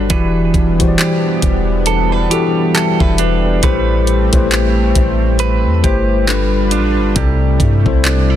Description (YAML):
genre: contemporary R&B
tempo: 68 BPM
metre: 4/4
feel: swing 58% on 16ths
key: unclear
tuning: A4 = 445 Hz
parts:
  - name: mellow tine electric piano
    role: accompaniment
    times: 0.0-8.4 s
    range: C3 to G5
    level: -17 LUFS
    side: left 5 dB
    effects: slow stereo tremolo
  - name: chorused pulse-width pad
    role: sustained chords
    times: 0.0-8.4 s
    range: C3 to B4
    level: -22 LUFS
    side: right 2 dB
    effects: none
  - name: direct-recorded clean electric guitar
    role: arpeggios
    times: 0.0-8.4 s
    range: C3 to B4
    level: -20 LUFS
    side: right 10 dB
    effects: spring reverb, digital delay
  - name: warm 808-style bass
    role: bass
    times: 0.0-8.4 s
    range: E1 to G2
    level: -16 LUFS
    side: equal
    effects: none
  - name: smooth R&B drum kit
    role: drums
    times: 0.1-8.3 s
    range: handclaps, hi-hat, kick drum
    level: -16 LUFS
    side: equal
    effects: none
room: little or no reverb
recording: dense, heavily limited modern master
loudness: -11 LUFS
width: side -11 dB against mid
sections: 0.0-8.4 A section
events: none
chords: 0.1 Em7; 3.6 Am9; 6.3 G7; 7.2 C6